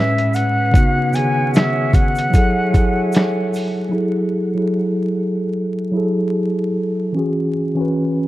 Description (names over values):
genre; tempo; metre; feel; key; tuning
lo-fi hip hop; 75 BPM; 4/4; swing 58% on 16ths; F# dorian; A4 = 436 Hz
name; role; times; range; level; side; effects
concert flute; melody; 0.0-3.5 s; E5 to G#5; -21 LUFS; left 1 dB; low-pass filter
mellow tine electric piano; accompaniment; 0.0-8.3 s; A2 to B4; -18 LUFS; equal; medium stereo tremolo, cassette tape, low-pass filter
mellow flute section; sustained chords; 0.0-3.9 s; C#4 to G#5; -28 LUFS; right 2 dB; low-pass filter
lo-fi sampler-style drum kit; drums; 0.2-3.8 s; finger snaps, hi-hat, kick drum, snare drum; -16 LUFS; equal; none
egg shaker; percussion; 0.3-3.8 s; none; -43 LUFS; right 4 dB; none
room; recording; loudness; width
light reverb, studio ambience; dark, warm production, vinyl crackle; -15 LUFS; side -16 dB against mid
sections
0.0-3.9 A section; 3.9-8.3 B section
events
none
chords
0.0 Amaj9; 0.7 C#9sus4; 2.3 F#m9; 7.1 E69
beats
| 0.74 1.54 2.34 3.14 | 3.94 4.74 5.54 6.34 | 7.14 7.94